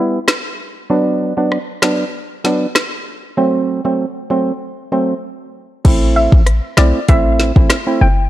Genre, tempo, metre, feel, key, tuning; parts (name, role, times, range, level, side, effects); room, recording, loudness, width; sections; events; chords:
dancehall; 97 BPM; 4/4; straight; A4 = 445 Hz
percussive organ stab; accompaniment; 0.0-8.1 s; F#3 to E4; -17 LUFS; right 2 dB; chorus, low-pass filter
afro-pop drum kit; drums; 0.3-7.9 s; crash cymbal, hi-hat, kick drum, rim click, snare drum; -15 LUFS; equal
short 808-style bass; bass; 5.8-8.3 s; F#1 to B1; -13 LUFS; equal
soft round pluck; melody; 6.2-8.1 s; D5 to G5; -19 LUFS; equal; chorus, digital delay
light reverb, digital ambience; dark, warm production; -13 LUFS; side -14 dB against mid
0.0-5.8 A section; 5.8-8.3 B section
0.0 Em; 0.9 Bm; 3.4 F#dim; 5.8 Am